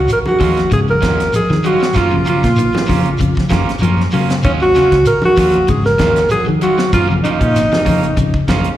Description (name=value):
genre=afrobeat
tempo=97 BPM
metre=4/4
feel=swing 54% on 16ths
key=Eb minor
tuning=A4 = 441 Hz
part: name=breathy alto saxophone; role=melody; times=0.0-8.4 s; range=Db4 to Bb4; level=-14 LUFS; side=right 1 dB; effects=slapback echo
part: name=electric guitar at the edge of break-up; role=arpeggios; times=0.0-8.4 s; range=Db3 to Gb3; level=-21 LUFS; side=left 6 dB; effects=slapback echo, tape echo
part: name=fingered electric bass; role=bass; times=0.0-8.6 s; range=Db2 to Gb3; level=-17 LUFS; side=equal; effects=none
part: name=tight funk drum kit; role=drums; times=0.1-8.8 s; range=hi-hat, kick drum, snare drum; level=-21 LUFS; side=equal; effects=none
part: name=shekere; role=percussion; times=0.1-8.8 s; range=none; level=-24 LUFS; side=equal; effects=none
part: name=congas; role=percussion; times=0.3-8.7 s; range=none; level=-21 LUFS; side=right 1 dB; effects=slapback echo
part: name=electric guitar at the edge of break-up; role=stabs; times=0.4-8.7 s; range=Gb3 to F4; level=-22 LUFS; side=right 6 dB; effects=slapback echo
room=moderate club reverb, RT60 0.5 s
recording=live gig heard through the venue's PA, recital hall reverb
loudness=-11 LUFS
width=side -13 dB against mid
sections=0.0-8.8 A section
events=drum fill 3.8-4.4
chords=0.0 Ebm11; 2.0 Gbmaj7; 4.4 Ebm11; 6.9 Gbmaj7